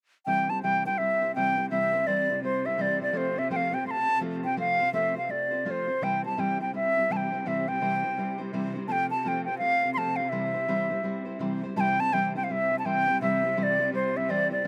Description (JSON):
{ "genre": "celtic folk", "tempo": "167 BPM", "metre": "4/4", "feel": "swing 62% on 8ths", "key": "C major", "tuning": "A4 = 441 Hz", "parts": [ { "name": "bright wooden flute", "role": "melody", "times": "0.3-14.7 s", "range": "C5 to C6", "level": "-28 LUFS", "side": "equal", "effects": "slapback echo" }, { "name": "fingerpicked steel-string acoustic guitar", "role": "accompaniment", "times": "0.3-14.7 s", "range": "C3 to C5", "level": "-34 LUFS", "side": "equal", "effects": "none" }, { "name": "clear studio string section", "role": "drone", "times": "0.3-14.7 s", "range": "C3", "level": "-41 LUFS", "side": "equal", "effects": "none" } ], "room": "little or no reverb", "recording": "recorded outdoors, with no room sound", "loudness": "-27 LUFS", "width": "mono", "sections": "0.3-11.8 A section; 11.8-14.7 A section", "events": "none", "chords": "0.3 C; 3.1 F; 6.0 C; 8.9 F; 10.3 C", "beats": "| 0.27 0.63 0.99 1.35 | 1.71 2.07 2.43 2.79 | 3.15 3.51 3.87 4.22 | 4.58 4.94 5.30 5.66 | 6.02 6.38 6.74 7.10 | 7.46 7.82 8.17 8.53 | 8.89 9.25 9.61 9.97 | 10.33 10.69 11.05 11.41 | 11.77 12.12 12.48 12.84 | 13.20 13.56 13.92 14.28 | 14.64" }